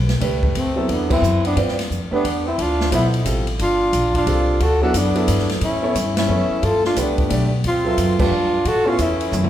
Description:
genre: jazz, small-group swing and bop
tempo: 178 BPM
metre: 3/4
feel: swing 64% on 8ths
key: unclear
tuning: A4 = 439 Hz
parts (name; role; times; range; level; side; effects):
- upright bass; bass; 0.0-9.5 s; G1 to A2; -21 LUFS; equal; none
- open jazz drum kit; drums; 0.1-9.5 s; crash cymbal, hi-hat, kick drum, ride cymbal, snare drum, toms; -25 LUFS; left 1 dB; none
- clear grand piano; accompaniment; 0.2-9.3 s; B2 to E5; -24 LUFS; right 2 dB; none
- breathy tenor saxophone; melody; 0.6-9.5 s; C4 to A4; -21 LUFS; left 1 dB; none
- breathy trumpet; second line; 0.6-9.5 s; A3 to F#4; -27 LUFS; right 3 dB; none
room: wet recital hall reverb, RT60 1.3 s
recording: recorded in a church or concert hall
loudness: -16 LUFS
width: side -11 dB against mid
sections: 0.0-9.5 A section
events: band accent 1.1, 6.1, 8.1; drum fill 9.3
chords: 0.0 Gadd9; 0.5 D13; 1.6 G13; 3.6 Gm7; 4.6 D69; 5.6 A13; 6.6 Gadd9; 7.6 D13; 8.3 G5; 8.6 A69

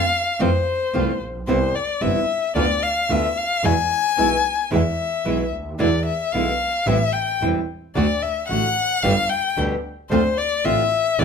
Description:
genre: tango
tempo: 111 BPM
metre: 4/4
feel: rubato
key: unclear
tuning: A4 = 439 Hz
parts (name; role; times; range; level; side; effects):
- warm violin; second line; 0.0-11.2 s; C5 to G#5; -21 LUFS; left 5 dB; none
- flamenco guitar; accompaniment; 0.0-11.2 s; B2 to G4; -23 LUFS; right 2 dB; none
- clear double bass; bass; 0.0-11.2 s; E1 to F2; -25 LUFS; right 2 dB; none
room: moderate studio reverb, RT60 0.8 s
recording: none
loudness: -18 LUFS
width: side -6 dB against mid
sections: 0.0-11.2 A section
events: violin solo 0.0-11.2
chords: 0.4 Fmaj7; 1.5 Cmaj7; 2.6 Bm7b5/D; 3.6 E7; 6.9 Am7; 8.0 D; 9.0 G; 10.1 Dm7

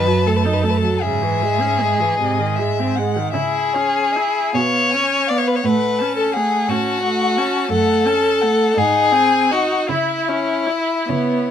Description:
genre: classical, slow romantic movement for string quartet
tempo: 46-59 BPM (dotted quarters)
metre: 6/8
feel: rubato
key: C# minor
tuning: A4 = 440 Hz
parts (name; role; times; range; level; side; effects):
- rich violin; melody; 0.0-11.5 s; C#5 to A5; -26 LUFS; left 8 dB; none
- rich violin; second line; 0.0-11.5 s; E4 to D5; -18 LUFS; left 3 dB; none
- rich viola; accompaniment; 0.0-11.5 s; B#2 to E4; -22 LUFS; right 3 dB; none
- rich cello; bass; 0.0-11.5 s; F#2 to C#3; -23 LUFS; right 5 dB; none
room: light reverb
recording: minimal, uncompressed stereo recording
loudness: -15 LUFS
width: side -9 dB against mid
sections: 0.0-11.5 A section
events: none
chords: 0.0 D#dim/F#; 1.0 C#m/G#; 2.2 G#; 3.3 C#m; 4.5 C#7/B; 5.7 F#m/A; 7.7 F#m; 8.8 G#7; 9.9 C#m

